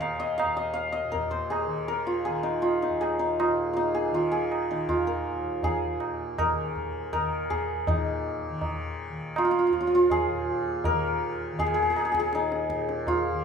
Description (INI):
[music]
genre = indian classical, Hindustani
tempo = 80 BPM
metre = 4/4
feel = straight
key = Eb raga durga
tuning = A4 = 440 Hz
[part]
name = santur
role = melody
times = 0.0-13.4 s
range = Eb4 to Ab5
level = -26 LUFS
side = equal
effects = none
[part]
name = tanpura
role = drone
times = 0.0-13.4 s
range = Eb2 to Eb3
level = -36 LUFS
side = left 1 dB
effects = none
[part]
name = tabla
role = percussion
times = 0.0-13.3 s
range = none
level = -32 LUFS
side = right 1 dB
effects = none
[sound]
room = moderate recital hall reverb, RT60 1.5 s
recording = minimal, uncompressed stereo recording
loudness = -25 LUFS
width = side -6 dB against mid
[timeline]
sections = 0.0-7.9 A section; 7.9-13.4 B section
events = none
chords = none